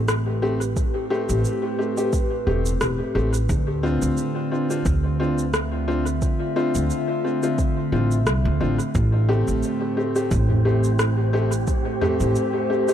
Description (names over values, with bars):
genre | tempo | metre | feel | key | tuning
ambient dub | 88 BPM | 4/4 | swing 55% on 16ths | A minor | A4 = 439 Hz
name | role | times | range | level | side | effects
warbly tape-like pad | sustained chords | 0.0-12.9 s | A2 to E5 | -26 LUFS | equal | chorus, built-in reverb
upright bass | bass | 0.0-12.3 s | E1 to D2 | -22 LUFS | equal | none
organic electronic drum kit | drums | 0.1-12.9 s | rim click, shaker, toms | -29 LUFS | right 1 dB | dub echo
clear upright piano | stabs | 0.4-12.9 s | A3 to G4 | -25 LUFS | left 1 dB | dub echo
electronic kick drum | drums | 0.8-11.8 s | none | -23 LUFS | equal | overdrive
wind-like tuned noise texture | texture | 9.6-12.9 s | C4 to C5 | -32 LUFS | right 2 dB | built-in reverb
room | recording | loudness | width
light reverb, digital ambience | none | -20 LUFS | side -10 dB against mid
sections
0.0-12.9 A section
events
none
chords
0.0 Am7; 3.5 Dm7; 8.9 Am7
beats
0.08 | 0.77 1.45 2.13 2.81 | 3.49 4.17 4.86 5.54 | 6.22 6.90 7.58 8.27 | 8.95 9.63 10.31 10.99 | 11.68 12.36